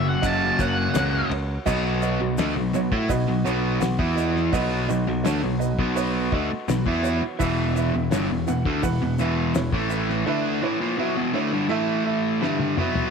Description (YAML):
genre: classic rock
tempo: 84 BPM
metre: 4/4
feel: straight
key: unclear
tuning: A4 = 441 Hz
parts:
  - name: octave-fuzz lead guitar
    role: melody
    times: 0.0-1.3 s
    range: F#5 to A5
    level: -26 LUFS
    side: equal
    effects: distortion, slapback echo
  - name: warm upright piano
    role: accompaniment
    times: 0.0-13.1 s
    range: E4 to F#5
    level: -30 LUFS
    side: right 10 dB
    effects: none
  - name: crunchy overdriven guitar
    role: riff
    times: 0.0-13.1 s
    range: E2 to E4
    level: -27 LUFS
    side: right 12 dB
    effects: none
  - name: overdriven electric guitar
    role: riff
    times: 0.0-13.1 s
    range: E2 to E4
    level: -26 LUFS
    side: left 11 dB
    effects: none
  - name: modern bright picked electric bass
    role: bass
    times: 0.0-10.2 s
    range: E1 to A2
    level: -26 LUFS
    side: equal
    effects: none
  - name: cloth-damped thuddy drum kit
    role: drums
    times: 0.2-13.1 s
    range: crash cymbal, hi-hat, kick drum, ride cymbal, snare drum, toms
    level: -30 LUFS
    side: left 3 dB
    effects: none
  - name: egg shaker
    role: percussion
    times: 0.2-10.1 s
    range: none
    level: -42 LUFS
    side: left 16 dB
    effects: none
room: moderate spring reverb, RT60 2.0 s, small room ambience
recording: 1960s-style stereo with parts hard left and right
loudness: -21 LUFS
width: side -6 dB against mid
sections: 0.0-1.7 A section; 1.7-13.1 B section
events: lead electric guitar solo 0.0-1.7; drum fill 12.4-13.1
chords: 0.0 F#; 1.7 B; 7.4 E5; 11.7 A5; 12.4 E5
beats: 0.24 0.95 | 1.67 2.38 3.10 3.82 | 4.53 5.25 5.97 6.68 | 7.40 8.12 8.84 9.55 | 10.27 10.99 11.71 12.42